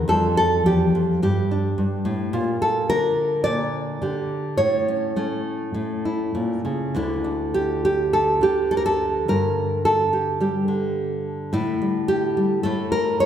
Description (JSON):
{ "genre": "folk, solo fingerstyle acoustic guitar", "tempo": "106 BPM", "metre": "4/4", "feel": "rubato", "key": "D minor", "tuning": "A4 = 439 Hz", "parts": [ { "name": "nylon-string guitar", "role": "solo", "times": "0.0-13.3 s", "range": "D2 to D5", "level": "-20 LUFS", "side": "equal", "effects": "none" } ], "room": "wet concert hall reverb, RT60 1.9 s", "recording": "heard from further back in the room", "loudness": "-20 LUFS", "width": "side -9 dB against mid", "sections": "0.0-7.0 A section; 7.0-13.3 B section", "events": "none", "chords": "0.1 Fsus2; 1.2 G5; 2.3 Bb; 3.5 Gm/Bb; 4.6 A; 7.0 Dsus2; 9.3 Gmadd9; 11.5 A7sus4; 12.7 A5", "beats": "| 0.08 0.66 1.23 1.78 | 2.34 2.90 3.46 4.02 | 4.59 5.16 5.75 6.35 | 6.95 7.54 8.12 8.70 | 9.28 9.84 10.41 10.97 | 11.54 12.10 12.66 13.22" }